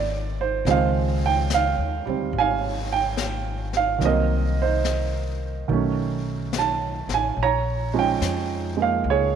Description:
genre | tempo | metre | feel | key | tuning
jazz ballad | 72 BPM | 4/4 | swing 66% on 8ths | unclear | A4 = 441 Hz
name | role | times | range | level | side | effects
warm upright piano | accompaniment | 0.0-9.4 s | Eb3 to Bb5 | -22 LUFS | right 8 dB | none
upright bass | bass | 0.0-9.4 s | Ab1 to F2 | -26 LUFS | left 2 dB | none
jazz brush drum kit | drums | 0.7-9.4 s | brushed snare drum, hi-hat, snare drum | -34 LUFS | left 10 dB | none
room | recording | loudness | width
light reverb, small room ambience | 1960s-style stereo with parts hard left and right | -21 LUFS | side -8 dB against mid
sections
0.0-9.4 A section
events
none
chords
0.0 Ab7b9; 0.7 Dbmaj9; 4.0 Cm7b5; 5.7 B9; 7.4 Bbm7

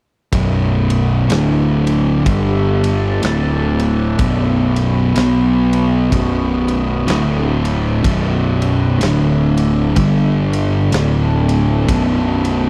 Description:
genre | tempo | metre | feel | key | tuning
stoner and doom metal | 62 BPM | 4/4 | swing 59% on 8ths | B minor | A4 = 440 Hz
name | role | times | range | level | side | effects
overtone-sweeping drone | sustained chords | 1.0-12.7 s | G3 to E5 | -30 LUFS | equal | chorus, built-in reverb
fuzz guitar | riff | 0.3-12.7 s | B1 to B3 | -19 LUFS | equal | distortion
thick fuzz guitar | riff | 0.3-12.7 s | B1 to B3 | -21 LUFS | equal | distortion
fuzz picked electric bass | bass | 0.3-12.7 s | B0 to B1 | -22 LUFS | equal | overdrive, tube saturation
big rock drum kit | drums | 0.3-12.6 s | kick drum, ride cymbal, snare drum | -26 LUFS | equal | none
room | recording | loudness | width
small room ambience | dry, close 1970s-style studio recording | -15 LUFS | mono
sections
0.3-12.7 A section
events
none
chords
0.3 B5; 1.3 D5; 2.3 G5; 3.2 D5; 4.2 B5; 7.1 D5; 8.0 B5; 9.0 D5; 10.0 G5; 10.9 D5; 11.9 B5

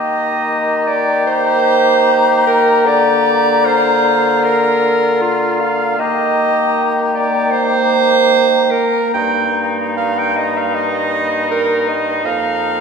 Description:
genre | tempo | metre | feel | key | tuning
classical, slow romantic movement for wind quintet | 77 BPM | 4/4 | uneven beats, rubato | Eb major | A4 = 439 Hz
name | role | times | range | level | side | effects
mellow silver concert flute | melody | 0.0-12.8 s | Bb5 | -19 LUFS | left 5 dB | none
warm oboe | second line | 0.0-12.8 s | Eb4 to G4 | -22 LUFS | left 4 dB | none
clear clarinet | accompaniment | 0.0-12.8 s | F4 to G5 | -16 LUFS | right 5 dB | none
warm French horn | accompaniment | 0.0-12.8 s | Bb3 | -24 LUFS | left 3 dB | none
mellow bassoon | bass | 0.0-12.8 s | F2 to Eb3 | -19 LUFS | equal | none
room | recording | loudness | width
wet recital hall reverb, RT60 1.7 s | recorded in a church or concert hall | -12 LUFS | side -6 dB against mid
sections
0.0-12.8 A section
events
none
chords
0.0 Eb; 2.9 Bb/D; 6.0 Eb; 9.1 Eb/G; 12.2 Bb5/F

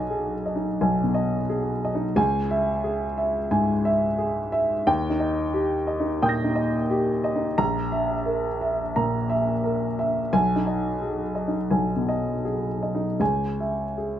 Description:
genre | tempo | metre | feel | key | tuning
neoclassical minimalist piano | 88 BPM | 4/4 | rubato | G# harmonic minor | A4 = 440 Hz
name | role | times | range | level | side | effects
dark upright piano | solo | 0.0-14.2 s | A#1 to A#6 | -22 LUFS | equal | none
room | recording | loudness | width
light reverb | dark, warm production | -22 LUFS | side -11 dB against mid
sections
0.0-14.2 A section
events
none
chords
0.0 G#m/B; 2.2 C#m; 4.9 D#; 7.6 N.C.; 10.3 G#m/B; 13.2 C#m

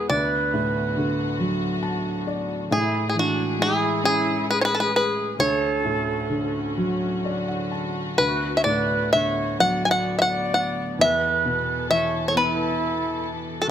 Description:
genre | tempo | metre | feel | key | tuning
celtic folk, Celtic slow air | 42-47 BPM (dotted quarters) | 6/8 | rubato | unclear | A4 = 436 Hz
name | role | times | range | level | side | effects
bluegrass banjo | melody | 0.0-13.7 s | F#4 to G#5 | -22 LUFS | equal | none
baroque flute | second line | 0.0-13.7 s | D4 to E5 | -27 LUFS | right 2 dB | none
felt-muted upright piano | accompaniment | 0.0-13.7 s | D2 to A5 | -26 LUFS | equal | none
warm studio string section | sustained chords | 0.0-13.7 s | D3 to A4 | -32 LUFS | equal | none
room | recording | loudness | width
light reverb | close, detailed microphones | -20 LUFS | side -9 dB against mid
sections
0.0-13.7 A section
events
felt piano fill 1.4-2.7, 6.8-8.2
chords
0.1 D6; 2.7 Amaj7; 5.4 Dmaj7; 8.2 D6; 11.0 Asus2/E

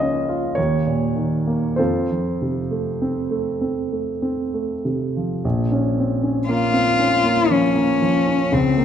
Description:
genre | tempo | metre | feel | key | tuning
classical, romantic duo for cello and grand piano | 46-60 BPM | 3/4 | rubato | Bb minor | A4 = 440 Hz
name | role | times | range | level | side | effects
warm grand piano | accompaniment | 0.0-8.8 s | Bb1 to F5 | -19 LUFS | right 1 dB | none
warm cello | melody | 6.5-8.8 s | C4 to F4 | -17 LUFS | left 4 dB | none
room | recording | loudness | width
moderate concert hall reverb, RT60 1.7 s | nothing above 10.4 kHz | -18 LUFS | side -9 dB against mid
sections
0.0-5.4 A section; 5.4-8.8 B section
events
none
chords
0.0 Bbm/Db; 0.6 Eb5; 1.8 F; 5.4 Bbm

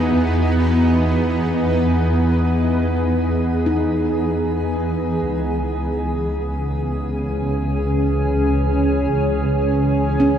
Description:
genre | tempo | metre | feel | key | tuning
ambient | free time | none | none | C# minor | A4 = 441 Hz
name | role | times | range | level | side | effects
shimmering ambient pad | sustained chords | 0.0-10.4 s | C#3 to G#4 | -19 LUFS | equal | chorus, built-in reverb, shimmer reverb
handpan | arpeggios | 0.0-10.4 s | C#4 to F#4 | -25 LUFS | left 1 dB | tape echo, shimmer reverb
muted chamber double bass section | bass | 0.0-10.4 s | C#2 to E2 | -21 LUFS | equal | none
room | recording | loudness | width
wet concert hall reverb, RT60 2.0 s | dark, warm production | -17 LUFS | side -9 dB against mid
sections
0.0-10.4 A section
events
none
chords
0.0 Emaj7; 5.3 C#m

